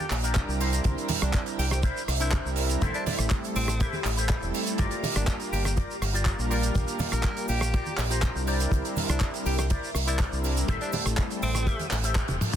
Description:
nu-disco, nu disco; 122 BPM; 4/4; straight; A4 = 441 Hz
raspy tenor saxophone; melody; 0.0-11.9 s; C4 to Bb4; -36 LUFS; equal; digital delay
string machine, full ensemble; sustained chords; 0.0-12.6 s; G4 to E6; -38 LUFS; right 1 dB; phaser, ensemble chorus, sidechain pumping
electric guitar with an envelope filter; riff; 0.0-12.4 s; D4 to E5; -35 LUFS; left 3 dB; analog chorus, digital delay
damped 70s drum kit; drums; 0.0-12.6 s; handclaps, hi-hat, rim click, shaker, toms; -31 LUFS; right 2 dB; small room reverb
congas and cabasa; percussion; 0.0-12.5 s; -36 LUFS; right 3 dB
fingered electric bass with an envelope filter; bass; 0.1-12.4 s; E1 to C2; -28 LUFS; equal
warm analog pad; accompaniment; 0.4-12.6 s; G3 to Bb4; -34 LUFS; right 1 dB; chorus, sidechain pumping, digital delay
kick drum; drums; 0.4-12.3 s; -26 LUFS; equal; small room reverb
studio reverb; dense, heavily limited modern master; -24 LUFS; side -10 dB against mid
0.0-12.6 A section
band accent 12.2; drum fill 12.3
0.0 Bb6; 0.6 C9; 2.8 Am7; 4.8 Gm7; 6.5 Bb6; 8.5 C9; 10.7 Am7
0.36 | 0.85 1.34 1.83 2.33 | 2.82 3.31 3.80 4.29 | 4.79 5.28 5.77 6.26 | 6.75 7.25 7.74 8.23 | 8.72 9.21 9.70 10.20 | 10.69 11.18 11.67 12.16

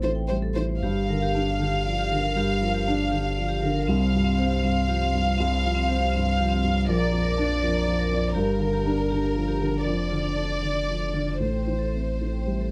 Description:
neoclassical piano and strings; 119 BPM; 3/4; rubato; G dorian; A4 = 440 Hz
warm chamber violin section; melody; 0.0-12.7 s; Bb4 to F5; -30 LUFS; equal
dark baby grand piano; accompaniment; 0.0-12.7 s; Bb1 to D4; -29 LUFS; equal
vibraphone with hard mallets; arpeggios; 0.0-12.7 s; C4 to Bb5; -35 LUFS; equal; slapback echo
punchy sub bass; bass; 0.0-12.7 s; F1 to C2; -30 LUFS; equal
light reverb; -24 LUFS; mono
0.8-12.7 A section
0.0 Am7; 0.8 Gm7; 3.9 Csus4; 6.9 Bb; 8.4 Gm7; 9.8 Dm/F; 11.4 Am7
0.29 | 0.82 1.33 1.85 | 2.36 2.86 3.36 | 3.87 4.37 4.88 | 5.38 5.88 6.38 | 6.87 7.37 7.86 | 8.35 8.85 9.35 | 9.85 10.35 10.87 | 11.40 11.93 12.46

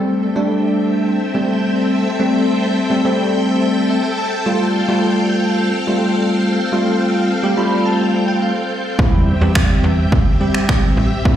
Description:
dance-pop; 106 BPM; 4/4; straight; A minor; A4 = 440 Hz
bell-like tine electric piano; accompaniment; 0.0-11.4 s; G3 to B5; -16 LUFS; equal; ensemble chorus, sidechain pumping
string machine, violins; sustained chords; 0.0-11.4 s; C4 to G5; -21 LUFS; left 1 dB; ensemble chorus, sidechain pumping
slap-like FM bass; bass; 9.0-11.4 s; A1 to E2; -17 LUFS; equal; sidechain pumping
house drum kit; drums; 9.0-11.4 s; finger snaps, kick drum; -15 LUFS; equal; overdrive
light reverb; live gig heard through the venue's PA, recital hall reverb; -14 LUFS; side -10 dB against mid
0.0-11.4 A section
tine electric piano fill 3.6-4.5, 7.3-9.0
0.0 Am7; 4.5 Fadd9; 9.0 C
0.50 1.06 1.63 | 2.20 2.76 3.33 3.90 | 4.46 5.03 5.59 6.16 | 6.72 7.29 7.86 8.42 | 8.99 9.55 10.12 10.69 | 11.25

